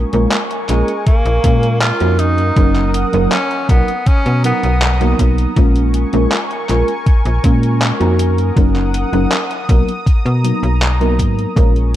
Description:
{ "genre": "vaporwave", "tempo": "80 BPM", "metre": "4/4", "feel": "straight", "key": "Bb phrygian", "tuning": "A4 = 440 Hz", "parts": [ { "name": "mellow FM electric piano", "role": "accompaniment", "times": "0.0-12.0 s", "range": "Gb3 to Bb4", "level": "-18 LUFS", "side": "right 1 dB", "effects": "phaser, ensemble chorus, analog delay" }, { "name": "lush unison pad", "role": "sustained chords", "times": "0.0-12.0 s", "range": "Bb4 to Eb6", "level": "-24 LUFS", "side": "equal", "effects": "chorus" }, { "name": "slap-like FM bass", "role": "bass", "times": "0.0-12.0 s", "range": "Gb1 to B2", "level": "-15 LUFS", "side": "equal", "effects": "none" }, { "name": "detuned 8-bit digital drum machine", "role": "drums", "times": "0.1-11.9 s", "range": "handclaps, hi-hat", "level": "-21 LUFS", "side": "equal", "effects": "overdrive, gated reverb" }, { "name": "breathy tenor saxophone", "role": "melody", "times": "0.7-5.2 s", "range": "Ab3 to F4", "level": "-21 LUFS", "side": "equal", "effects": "tape echo" }, { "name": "electronic kick drum", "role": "drums", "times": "1.1-11.7 s", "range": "none", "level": "-12 LUFS", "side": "equal", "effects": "overdrive" } ], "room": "digital ambience", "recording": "none", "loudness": "-12 LUFS", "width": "side -13 dB against mid", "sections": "0.0-12.0 A section", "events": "none", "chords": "0.0 Bbm7; 2.2 Gb6; 3.7 Bmaj7; 5.6 Bbm7; 8.2 Gb6; 9.7 Bmaj7" }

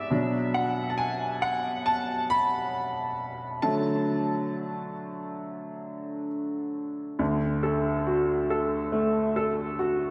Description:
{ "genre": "pop", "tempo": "68 BPM", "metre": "4/4", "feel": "straight", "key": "unclear", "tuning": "A4 = 437 Hz", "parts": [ { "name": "clear upright piano", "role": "solo", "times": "0.0-10.1 s", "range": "D2 to B5", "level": "-28 LUFS", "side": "equal", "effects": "subtle chorus" } ], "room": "wet lush hall reverb, RT60 3.1 s", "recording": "dreamy mix soaked in reverb", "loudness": "-28 LUFS", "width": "mono", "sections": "0.0-7.2 A section; 7.2-10.1 B section", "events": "upright piano solo 0.0-7.2", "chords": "0.1 Bm; 3.6 D" }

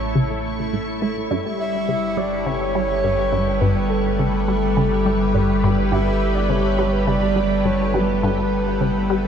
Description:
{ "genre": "ambient, sequencer-driven space music", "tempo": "104 BPM", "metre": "4/4", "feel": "straight", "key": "G lydian", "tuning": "A4 = 438 Hz", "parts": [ { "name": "breathy flute-like synth lead", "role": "melody", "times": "0.0-9.3 s", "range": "A4 to E5", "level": "-25 LUFS", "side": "right 1 dB", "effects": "lush chorus, ping-pong delay" }, { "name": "string machine, full ensemble", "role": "sustained chords", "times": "0.0-9.3 s", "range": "G3 to E5", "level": "-22 LUFS", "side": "equal", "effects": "phaser, ensemble chorus" }, { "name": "resonant blip pluck", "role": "riff", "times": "0.0-9.3 s", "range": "G2 to A3", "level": "-24 LUFS", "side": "equal", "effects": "phaser, ping-pong delay" }, { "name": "round analog bass", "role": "bass", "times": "0.0-9.3 s", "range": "G1 to A1", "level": "-26 LUFS", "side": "equal", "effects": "none" }, { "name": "bubbling stepped-filter texture", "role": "texture", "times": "0.0-9.3 s", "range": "E4 to C#6", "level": "-32 LUFS", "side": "left 2 dB", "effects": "chorus, built-in reverb" } ], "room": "wet plate reverb, RT60 3.3 s", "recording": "dreamy mix soaked in reverb, cassette tape", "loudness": "-18 LUFS", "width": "side -8 dB against mid", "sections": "0.0-9.3 A section", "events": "filter sweep on synth arpeggio sound 0.0-9.3", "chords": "0.0 A; 1.3 Gadd9" }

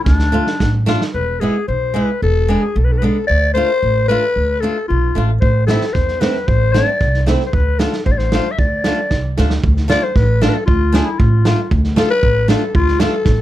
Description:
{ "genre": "klezmer", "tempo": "114 BPM", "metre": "2/4", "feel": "straight", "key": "D dorian sharp4", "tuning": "A4 = 438 Hz", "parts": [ { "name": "growling clarinet", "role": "melody", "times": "0.0-13.4 s", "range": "D4 to E5", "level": "-18 LUFS", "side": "left 3 dB", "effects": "plate reverb" }, { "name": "upright bass", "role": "bass", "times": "0.1-13.4 s", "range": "E1 to E2", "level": "-16 LUFS", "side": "equal", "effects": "none" }, { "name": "vintage drum kit", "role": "drums", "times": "0.1-1.1, 5.4-13.4 s", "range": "kick drum, snare drum", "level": "-19 LUFS", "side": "right 2 dB", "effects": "none" }, { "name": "flamenco guitar", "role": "accompaniment", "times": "0.3-13.1 s", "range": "G#3 to G#4", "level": "-19 LUFS", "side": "right 1 dB", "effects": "none" } ], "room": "little or no reverb", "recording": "close, detailed microphones", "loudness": "-13 LUFS", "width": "side -13 dB against mid", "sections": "0.0-1.1 A section; 1.1-9.6 B section; 9.6-13.4 A section", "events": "speeding up 0.0-13.4; drum fill 0.1-1.1, 9.1-9.6, 13.3", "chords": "0.1 Dm; 1.1 E; 3.3 Dm; 5.4 Am; 7.5 Dm" }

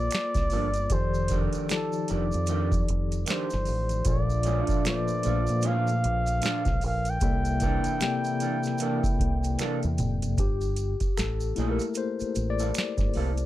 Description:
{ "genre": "R&B, neo-soul", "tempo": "76 BPM", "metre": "4/4", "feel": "swing 60% on 16ths", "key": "G dorian", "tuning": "A4 = 439 Hz", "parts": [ { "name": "breathy flugelhorn", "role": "melody", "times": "0.0-9.6 s", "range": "A4 to G5", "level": "-31 LUFS", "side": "equal", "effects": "tape echo" }, { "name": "tine electric piano", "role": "accompaniment", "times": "0.0-13.5 s", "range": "Bb2 to G5", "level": "-30 LUFS", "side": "left 5 dB", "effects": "medium tremolo" }, { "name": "deep dub fingered electric bass", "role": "bass", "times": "0.0-13.5 s", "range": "F1 to Bb2", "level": "-28 LUFS", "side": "equal", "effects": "none" }, { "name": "booming analog drum machine", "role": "drums", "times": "0.1-13.5 s", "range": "hi-hat, kick drum, snare drum, toms", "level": "-29 LUFS", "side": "right 1 dB", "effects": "none" }, { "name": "finger snaps and maracas", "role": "percussion", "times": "0.1-13.5 s", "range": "none", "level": "-43 LUFS", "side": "right 4 dB", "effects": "none" }, { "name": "electric guitar through a small old amp", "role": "second line", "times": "0.5-13.3 s", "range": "Eb3 to A4", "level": "-33 LUFS", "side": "right 7 dB", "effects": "none" }, { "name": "warm trombone section", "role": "stabs", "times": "4.1-9.9 s", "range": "E3 to F4", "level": "-37 LUFS", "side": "right 8 dB", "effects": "none" } ], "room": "little or no reverb", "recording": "none", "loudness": "-24 LUFS", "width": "side -14 dB against mid", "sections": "0.0-10.4 A section; 10.4-13.5 B section", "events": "drum fill 9.6-10.4; tine electric piano solo 10.4-13.5", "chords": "0.0 Bbmaj7; 0.9 F13; 4.1 Bbmaj7; 7.2 C13; 10.4 Gm69" }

